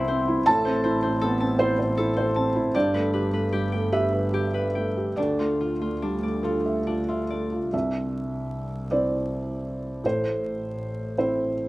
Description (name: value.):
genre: neoclassical piano and strings.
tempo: 45-53 BPM (dotted quarters).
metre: 6/8.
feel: rubato.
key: unclear.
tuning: A4 = 440 Hz.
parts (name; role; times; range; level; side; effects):
felt-muted upright piano; accompaniment; 0.0-11.7 s; C2 to A5; -24 LUFS; right 1 dB; none.
concert harp; arpeggios; 0.0-7.8 s; C4 to A5; -31 LUFS; left 4 dB; slapback echo.
warm double bass; bass; 0.0-11.7 s; G1 to D2; -31 LUFS; equal; none.
room: little or no reverb.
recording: recorded outdoors, with no room sound, vinyl crackle.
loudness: -23 LUFS.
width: side -18 dB against mid.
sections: 0.0-7.7 A section; 7.7-11.7 B section.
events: none.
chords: 0.5 Am; 2.7 Gadd9; 5.2 Dmadd9; 7.7 C; 10.0 Am.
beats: | 0.46 1.59 | 2.75 3.92 | 5.17 6.43 | 7.73 8.90 | 10.04 11.18.